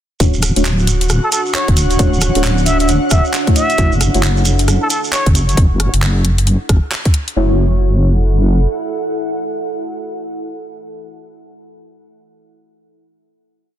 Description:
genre	UK garage, two-step garage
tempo	134 BPM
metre	4/4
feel	swing 62% on 16ths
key	F# minor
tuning	A4 = 436 Hz
part	airy breathy pad	sustained chords	0.2-5.6 s	F#4 to F#5	-26 LUFS	right 1 dB	chorus, vintage 12-bit sampler grit, sidechain pumping
part	deep mellow chord stab	stabs	0.2-4.2, 7.4-10.3 s	A3 to C#5	-21 LUFS	left 1 dB	chorus, phaser, digital delay
part	deep soft wobble bass	bass	0.2-8.7 s	D1 to F#1	-14 LUFS	equal	chorus, tube saturation, sidechain pumping
part	electronic kick drum	drums	0.2-7.1 s	none	-13 LUFS	equal	none
part	garage drum kit	drums	0.2-7.3 s	handclaps, hi-hat, rim click	-21 LUFS	equal	soft clipping on snare
part	shekere	percussion	0.2-5.6 s	none	-24 LUFS	right 5 dB	none
part	deep dark ambient pad	texture	1.4-10.5 s	D4 to F#5	-22 LUFS	right 1 dB	chorus, built-in reverb, sidechain pumping
part	trumpet with plunger mute	melody	1.2-5.3 s	A4 to E5	-20 LUFS	equal	digital delay
room	light reverb, digital ambience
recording	dense, heavily limited modern master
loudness	-12 LUFS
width	side -11 dB against mid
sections	0.2-7.4 groove; 7.4-10.9 final chord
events	none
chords	0.2 Dmaj7; 3.6 F#m7

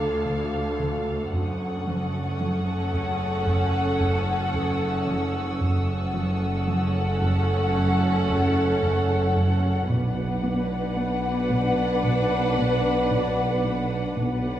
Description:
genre	cinematic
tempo	56 BPM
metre	4/4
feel	straight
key	unclear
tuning	A4 = 440 Hz
part	muted symphonic violin section	melody	0.0-14.6 s	F5 to F#5	-31 LUFS	left 3 dB	none
part	muted symphonic violin section	second line	0.0-14.6 s	A4 to B4	-31 LUFS	right 1 dB	none
part	muted symphonic viola section	accompaniment	0.0-14.6 s	C#4 to D4	-32 LUFS	right 1 dB	none
part	mellow French horn section	sustained chords	0.0-14.6 s	A3 to F4	-32 LUFS	left 1 dB	none
part	plucky analog bass	riff	0.0-14.5 s	F#2 to B3	-29 LUFS	equal	none
part	muted studio cello section	bass	0.0-14.6 s	D2 to B2	-29 LUFS	right 1 dB	none
part	muted studio double bass section	bass	0.0-14.6 s	F#1 to D2	-30 LUFS	right 2 dB	none
part	swarming drone	drone	0.0-14.6 s	F#1 to D2	-35 LUFS	right 1 dB	built-in reverb
part	muted symphonic violin section	texture	0.0-9.3 s	C#6 to A6	-40 LUFS	left 1 dB	none
room	wet recital hall reverb, RT60 1.5 s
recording	recorded in a church or concert hall, small room ambience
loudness	-22 LUFS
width	side -12 dB against mid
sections	0.0-14.6 A section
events	none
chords	0.0 Dm; 1.3 F#m; 9.9 Bm

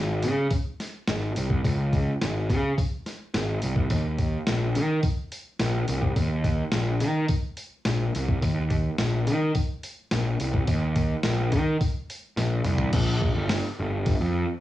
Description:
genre	indie rock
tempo	106 BPM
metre	4/4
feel	straight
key	unclear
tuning	A4 = 440 Hz
part	fuzz picked electric bass	bass	0.0-14.4 s	G1 to Eb3	-24 LUFS	equal	overdrive
part	boom bap sampler-style drum kit	drums	0.2-14.2 s	crash cymbal, hi-hat, kick drum, snare drum, toms	-27 LUFS	equal	none
room	little or no reverb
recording	home recording on cassette, studio reverb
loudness	-23 LUFS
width	side -14 dB against mid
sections	0.0-12.9 A section; 12.9-14.6 B section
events	drum fill 12.4-12.9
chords	none

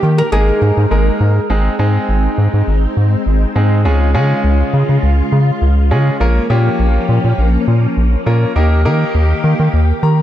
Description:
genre	pop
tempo	102 BPM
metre	4/4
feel	straight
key	Ab major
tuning	A4 = 440 Hz
part	oud	melody	0.0-1.2 s	G4 to Bb4	-20 LUFS	right 1 dB	digital delay
part	clear grand piano	accompaniment	0.0-10.2 s	Ab3 to Bb5	-20 LUFS	equal	none
part	soft string machine	sustained chords	0.0-10.2 s	Db3 to Bb4	-20 LUFS	left 1 dB	phaser, ensemble chorus
part	round analog bass	bass	0.0-10.2 s	Ab1 to Eb3	-12 LUFS	equal	none
room	light reverb, studio reverb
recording	dark, warm production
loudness	-11 LUFS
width	side -12 dB against mid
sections	0.0-1.5 A section; 1.5-10.2 B section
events	grand piano fill 9.7-10.2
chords	0.3 Absus2; 1.5 Ab; 3.9 Db; 6.2 Bbm; 8.6 Eb

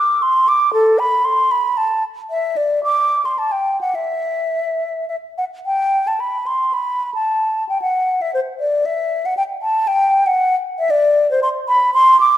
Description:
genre	classical, baroque-style fantasia for unaccompanied flute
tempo	102-118 BPM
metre	3/4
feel	rubato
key	E minor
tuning	A4 = 440 Hz
part	mellow hollow silver concert flute	solo	0.0-12.4 s	A4 to D6	-15 LUFS	equal	none
room	wet recital hall reverb, RT60 1.8 s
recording	minimal, uncompressed stereo recording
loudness	-15 LUFS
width	side -12 dB against mid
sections	0.0-5.7 A section; 5.7-12.4 B section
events	none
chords	none

